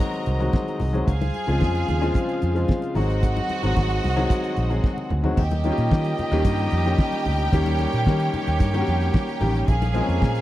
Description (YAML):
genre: disco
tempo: 112 BPM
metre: 4/4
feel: straight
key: unclear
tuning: A4 = 440 Hz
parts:
  - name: clear studio string section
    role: second line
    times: 0.0-10.4 s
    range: Gb4 to Bb5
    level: -29 LUFS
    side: right 2 dB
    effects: tape echo
  - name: warm concert grand piano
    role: accompaniment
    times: 0.0-10.4 s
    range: Db3 to Ab4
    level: -26 LUFS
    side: left 2 dB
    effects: none
  - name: muted French horn section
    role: sustained chords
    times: 0.0-10.4 s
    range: Db4 to F5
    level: -33 LUFS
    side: right 1 dB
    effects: none
  - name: damped 70s drum kit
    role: drums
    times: 0.0-10.4 s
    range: crash cymbal, hi-hat, kick drum, snare drum, toms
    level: -21 LUFS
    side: equal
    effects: none
  - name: congas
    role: percussion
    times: 0.1-10.4 s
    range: none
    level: -33 LUFS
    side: left 4 dB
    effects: none
  - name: vintage muted fingered electric bass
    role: bass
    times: 0.3-10.4 s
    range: Ab1 to Eb3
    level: -23 LUFS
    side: equal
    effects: none
room: little or no reverb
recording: dry, close 1970s-style studio recording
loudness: -20 LUFS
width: side -14 dB against mid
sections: 0.0-5.4 A section; 5.4-10.4 B section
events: drum fill 4.8-5.4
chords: 0.0 Ab7; 1.1 Dbmaj7; 3.0 Ab7; 5.4 Eb7; 9.7 Bbm7